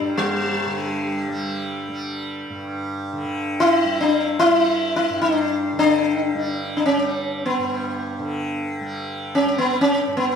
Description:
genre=indian classical, Hindustani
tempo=free time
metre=none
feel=none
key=G raga yaman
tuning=A4 = 440 Hz
part: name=sitar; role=melody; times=0.0-10.4 s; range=G3 to E4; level=-19 LUFS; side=left 1 dB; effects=none
part: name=tanpura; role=drone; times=0.0-10.4 s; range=G2 to G3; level=-27 LUFS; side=right 1 dB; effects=none
room=wet recital hall reverb, RT60 1.5 s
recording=minimal, uncompressed stereo recording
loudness=-19 LUFS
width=side -7 dB against mid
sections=0.0-3.3 A section; 3.3-10.4 A section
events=none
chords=none

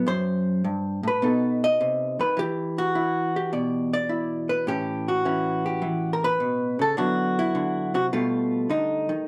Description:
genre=solo jazz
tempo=104 BPM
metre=4/4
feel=swing 69% on 8ths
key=unclear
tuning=A4 = 440 Hz
part: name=vintage hollow-body jazz guitar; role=solo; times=0.0-9.3 s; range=F#2 to D#5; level=-25 LUFS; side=equal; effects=none
room=wet studio ambience, RT60 0.5 s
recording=heard from further back in the room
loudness=-25 LUFS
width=mono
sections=0.0-9.3 A section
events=none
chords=0.1 F#dim; 1.2 B7; 2.4 Em7; 4.7 A13; 7.0 D13; 8.1 B7alt

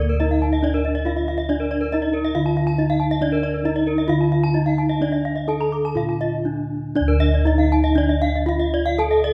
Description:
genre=Balinese gamelan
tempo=118-139 BPM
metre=4/4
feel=straight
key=D pelog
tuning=A4 = 440 Hz
part: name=gamelan-type bronze metallophone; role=melody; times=0.0-9.3 s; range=Bb3-20c to A4-30c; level=-24 LUFS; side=equal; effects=none
part: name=gamelan-type bronze metallophone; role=arpeggios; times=0.0-9.1 s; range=Bb4-20c to D6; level=-30 LUFS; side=equal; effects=none
part: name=gamelan-type bossed gongs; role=bass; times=0.0-9.3 s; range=D2 to Bb4-20c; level=-24 LUFS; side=equal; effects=none
part: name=gamelan-type bronze metallophone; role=arpeggios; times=0.1-9.3 s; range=Bb4-20c to Bb5-20c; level=-30 LUFS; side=equal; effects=none
room=wet recital hall reverb, RT60 1.5 s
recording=none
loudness=-20 LUFS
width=mono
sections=0.0-7.0 A section; 7.0-9.3 B section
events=break 6.2-7.0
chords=none

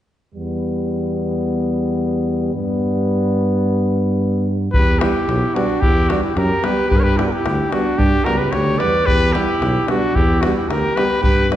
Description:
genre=balkan folk, Balkan brass band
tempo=110 BPM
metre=2/4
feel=straight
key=E dorian sharp4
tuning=A4 = 440 Hz
part: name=warm euphonium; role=accompaniment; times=0.3-11.6 s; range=G3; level=-25 LUFS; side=right 2 dB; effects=none
part: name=mellow tuba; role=bass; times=0.3-11.5 s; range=B1 to G2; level=-21 LUFS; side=equal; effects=none
part: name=warm trombone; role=accompaniment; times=0.4-11.6 s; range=B3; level=-25 LUFS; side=left 3 dB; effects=none
part: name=clear trumpet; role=melody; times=4.7-11.5 s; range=F#4 to D5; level=-20 LUFS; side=left 1 dB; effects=none
part: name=clear alto saxophone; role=second line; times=4.7-11.5 s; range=D4 to B4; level=-22 LUFS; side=right 2 dB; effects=none
part: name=davul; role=percussion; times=4.7-11.6 s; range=none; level=-20 LUFS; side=equal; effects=none
room=wet recital hall reverb, RT60 1.6 s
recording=heard from further back in the room, nothing above 10.3 kHz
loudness=-15 LUFS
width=side -12 dB against mid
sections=0.3-4.7 A section; 4.7-11.6 B section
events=none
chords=0.3 Em; 2.5 G; 4.7 Em; 6.9 G; 9.1 Em

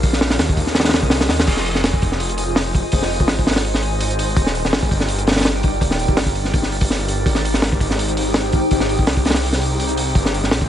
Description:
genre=drum and bass, jungle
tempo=166 BPM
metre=4/4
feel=straight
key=F dorian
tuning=A4 = 440 Hz
part: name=detuned saw bass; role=bass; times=0.0-10.7 s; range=Eb1 to Eb2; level=-22 LUFS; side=equal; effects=none
part: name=crunchy breakbeat drum kit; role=drums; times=0.0-10.7 s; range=crash cymbal, hi-hat, kick drum, snare drum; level=-18 LUFS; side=equal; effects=none
room=studio reverb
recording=nothing above 10.7 kHz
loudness=-15 LUFS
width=side -10 dB against mid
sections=0.0-1.5 A section; 1.5-10.7 A section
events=drop 0.0-1.5, 1.5-10.7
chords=none

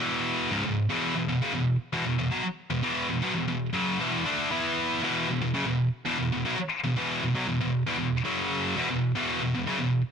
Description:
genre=metal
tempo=116 BPM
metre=4/4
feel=straight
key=unclear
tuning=A4 = 440 Hz
part: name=scooped high-gain guitar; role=solo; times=0.0-10.0 s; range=C#2 to E4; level=-25 LUFS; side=equal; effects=distortion
room=digital ambience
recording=none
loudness=-25 LUFS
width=side -7 dB against mid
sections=0.0-10.1 A section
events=none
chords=0.0 E5; 0.5 C#5; 0.9 E5; 8.3 F#5; 8.8 E5

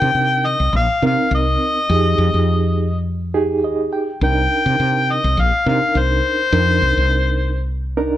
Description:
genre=blues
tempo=104 BPM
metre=4/4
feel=swing 53% on 16ths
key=C minor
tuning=A4 = 440 Hz
part: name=mellow harmonica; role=melody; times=0.0-7.7 s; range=C5 to G5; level=-18 LUFS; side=left 2 dB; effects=overdrive
part: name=reed electric piano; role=accompaniment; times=0.0-8.2 s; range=C4 to G5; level=-21 LUFS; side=right 2 dB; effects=overdrive, fast tremolo
part: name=woody fretless electric bass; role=bass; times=0.0-8.2 s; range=Bb1 to C3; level=-18 LUFS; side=equal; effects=none
room=light reverb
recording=band playing live in one room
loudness=-15 LUFS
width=side -12 dB against mid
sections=0.0-8.2 A section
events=harmonica solo 0.0-8.2; reed electric piano fill 3.3-4.2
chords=0.0 Cm7; 1.9 Fm7; 4.2 Cm7

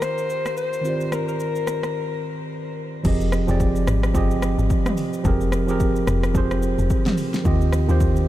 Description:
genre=amapiano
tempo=109 BPM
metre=4/4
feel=swing 58% on 16ths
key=unclear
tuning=A4 = 440 Hz
part: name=warm alto saxophone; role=melody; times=0.0-2.3 s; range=Bb4 to C5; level=-28 LUFS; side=left 4 dB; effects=ping-pong delay
part: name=tine electric piano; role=accompaniment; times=0.0-8.3 s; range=Eb3 to Eb5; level=-24 LUFS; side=right 3 dB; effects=none
part: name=deep house drum kit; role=drums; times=0.0-8.3 s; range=crash cymbal, hi-hat, kick drum, rim click, shaker, snare drum, toms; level=-25 LUFS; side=left 1 dB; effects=overdrive
part: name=deep log drum bass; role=bass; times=3.0-8.3 s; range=F1 to Eb2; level=-21 LUFS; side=left 1 dB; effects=none
room=light reverb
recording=none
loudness=-19 LUFS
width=side -14 dB against mid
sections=0.0-3.0 A section; 3.0-8.3 B section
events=break 1.9-3.0; drop 3.0-8.3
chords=0.0 Eb69; 3.0 Fm9; 7.5 Eb69

